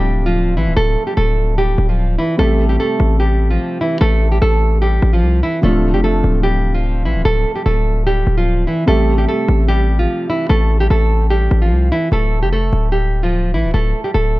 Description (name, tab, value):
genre	hip hop, trap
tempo	148 BPM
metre	4/4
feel	half-time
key	D minor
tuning	A4 = 440 Hz
part	nylon-string guitar	melody	0.0-14.4 s	E3 to A4	-18 LUFS	right 2 dB	low-pass filter, analog delay
part	dark concert grand piano	accompaniment	0.0-12.1 s	C3 to E5	-22 LUFS	equal	low-pass filter
part	hard-hitting 808-style bass	bass	0.0-14.4 s	D1 to C2	-15 LUFS	equal	none
room	small room ambience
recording	dry, gritty hardware recording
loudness	-13 LUFS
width	side -18 dB against mid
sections	0.0-12.1 A section; 12.1-14.4 B section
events	none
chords	0.0 Dm7; 2.4 Am7; 5.6 Dm7; 8.9 Am7; 12.1 Dm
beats	0.36 | 0.77 1.17 1.58 1.99 | 2.39 2.79 3.20 3.61 | 4.01 4.42 4.82 5.23 | 5.63 6.04 6.44 6.85 | 7.25 7.66 8.07 8.47 | 8.88 9.28 9.69 10.09 | 10.50 10.90 11.31 11.71 | 12.12 12.53 12.93 13.34 | 13.74 14.15